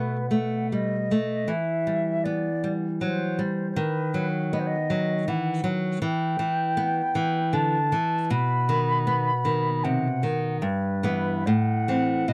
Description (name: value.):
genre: romantic duo for flute and classical guitar.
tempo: 79 BPM.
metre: 3/4.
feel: rubato.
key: E minor.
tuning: A4 = 440 Hz.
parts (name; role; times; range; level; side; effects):
mellow silver concert flute; melody; 0.0-12.3 s; B4 to B5; -30 LUFS; equal; none.
nylon-string guitar; accompaniment; 0.0-12.3 s; G2 to C4; -27 LUFS; equal; none.
room: little or no reverb.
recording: dry, close 1970s-style studio recording.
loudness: -25 LUFS.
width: mono.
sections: 0.0-12.3 A section.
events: none.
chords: 0.0 B7; 1.5 Em; 3.8 B/D#; 6.0 Em; 8.3 B; 10.6 Em/G; 11.5 F#m7b5/A.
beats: 0.72 | 1.50 2.25 3.02 | 3.78 4.53 5.29 | 6.04 6.79 7.55 | 8.31 9.08 9.85 | 10.62 11.47 12.29.